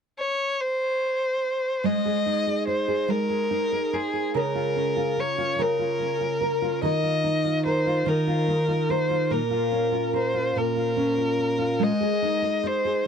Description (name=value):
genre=pop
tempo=48 BPM (dotted quarters)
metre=6/8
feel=straight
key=Ab major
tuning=A4 = 440 Hz
part: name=warm violin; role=melody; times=0.2-13.1 s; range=Ab4 to Eb5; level=-25 LUFS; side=left 2 dB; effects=tape echo
part: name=nylon-string guitar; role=accompaniment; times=1.8-13.1 s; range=Bb2 to C5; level=-24 LUFS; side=right 1 dB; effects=double-tracked left and right
room=light reverb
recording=dry, close 1970s-style studio recording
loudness=-22 LUFS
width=side -7 dB against mid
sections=0.0-1.8 A section; 1.8-13.1 B section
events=none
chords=0.0 N.C.; 1.8 Abadd9; 4.3 Db6; 6.8 Ebsus2; 9.3 Bbm; 11.8 Ab